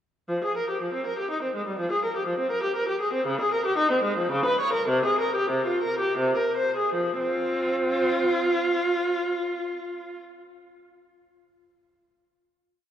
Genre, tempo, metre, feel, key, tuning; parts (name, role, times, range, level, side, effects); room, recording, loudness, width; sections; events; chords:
classical, baroque-style suite movement for unaccompanied viola; 77-125 BPM; 3/4; rubato; F minor; A4 = 440 Hz
rich viola; solo; 0.3-10.2 s; C3 to Db5; -23 LUFS; equal
wet church reverb, RT60 3.4 s; worn, warbling old tape, cassette tape, warbly pitch drift; -23 LUFS; side -10 dB against mid
0.3-6.9 A section; 6.9-11.5 final chord
slowing down 2.5-6.9
0.3 Fm; 1.8 Ab/F; 3.3 Db; 4.3 Bbm/Db; 4.9 Fm/C; 6.2 Abadd9/C; 6.9 F5